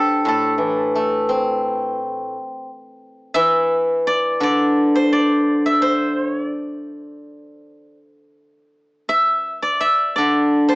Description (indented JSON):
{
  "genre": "chinese traditional, Chinese solo plucked strings",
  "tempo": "77-89 BPM",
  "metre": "4/4",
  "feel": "rubato",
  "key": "D shang mode",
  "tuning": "A4 = 440 Hz",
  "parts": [
    { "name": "steel-string zither", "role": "solo", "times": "0.0-10.8 s", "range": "A2 to A5", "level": "-16 LUFS", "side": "equal", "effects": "none" }
  ],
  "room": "moderate small room reverb, RT60 0.5 s",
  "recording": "worn, warbling old tape, cassette tape, warbly pitch drift, small speaker sound",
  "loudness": "-16 LUFS",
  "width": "side -23 dB against mid",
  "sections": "0.0-8.7 A section; 8.7-10.8 B section",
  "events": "none",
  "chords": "none"
}